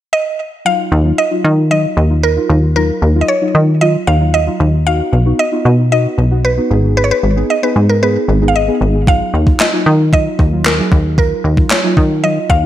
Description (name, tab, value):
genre	dance-pop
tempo	114 BPM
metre	4/4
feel	straight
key	Eb minor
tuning	A4 = 441 Hz
part	mallet-like synth pluck	melody	0.1-12.7 s	Bb4 to F5	-16 LUFS	equal	chorus, tape echo
part	deep mellow chord stab	accompaniment	0.7-12.7 s	Gb3 to Ab4	-19 LUFS	equal	chorus, sidechain pumping, tape echo
part	plucky analog bass	bass	0.9-12.7 s	Ab1 to Eb3	-12 LUFS	equal	sidechain pumping
part	gated 80s digital drum machine	drums	9.1-12.6 s	handclaps, kick drum, snare drum	-13 LUFS	equal	gated reverb, gated reverb snare, overdrive
room	light reverb, digital ambience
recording	echo-heavy mix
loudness	-11 LUFS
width	side -12 dB against mid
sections	0.7-12.7 A section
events	none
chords	0.0 N.C.; 0.7 Ebmadd9; 4.9 B; 6.7 Abm; 9.1 Ebmadd9